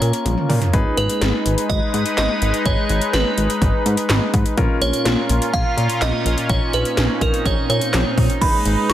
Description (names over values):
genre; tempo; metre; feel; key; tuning
synth-pop; 125 BPM; 4/4; straight; G# dorian; A4 = 441 Hz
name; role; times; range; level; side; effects
glassy synth bell; melody; 0.0-8.9 s; A#4 to C#6; -23 LUFS; right 2 dB; chorus, tremolo, tape echo
clear concert grand piano; accompaniment; 0.0-8.9 s; C#4 to A#5; -28 LUFS; left 2 dB; none
sweeping resonant pad; sustained chords; 0.0-8.9 s; A#2 to B4; -23 LUFS; equal; chorus
chorused synth bass; bass; 0.0-8.9 s; G#1 to A#2; -20 LUFS; equal; none
80s electronic pad drums; drums; 0.0-8.9 s; crash cymbal, handclaps, hi-hat, kick drum, snare drum, toms; -21 LUFS; equal; gated reverb on snare and toms, overdrive
swell; sound effects; 7.4-8.4 s; none; -31 LUFS; right 2 dB; none
room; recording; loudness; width
light reverb; dense, heavily limited modern master; -16 LUFS; side -12 dB against mid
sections
0.0-8.4 A section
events
drum fill 0.3-0.7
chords
0.0 A#m; 0.7 G#m; 4.6 A#m; 8.4 G#m